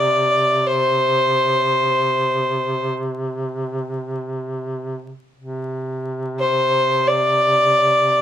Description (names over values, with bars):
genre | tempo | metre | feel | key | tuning
caucasian folk, Caucasian lament | free time | none | none | unclear | A4 = 440 Hz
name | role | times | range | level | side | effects
warm fiddle | melody | 0.0-8.2 s | C5 to D5 | -16 LUFS | left 1 dB | plate reverb
warm duduk | drone | 0.0-8.2 s | C3 | -24 LUFS | right 1 dB | none
room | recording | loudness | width
moderate studio reverb, RT60 0.6 s | vinyl crackle | -17 LUFS | side -10 dB against mid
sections
0.0-8.2 A section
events
none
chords
none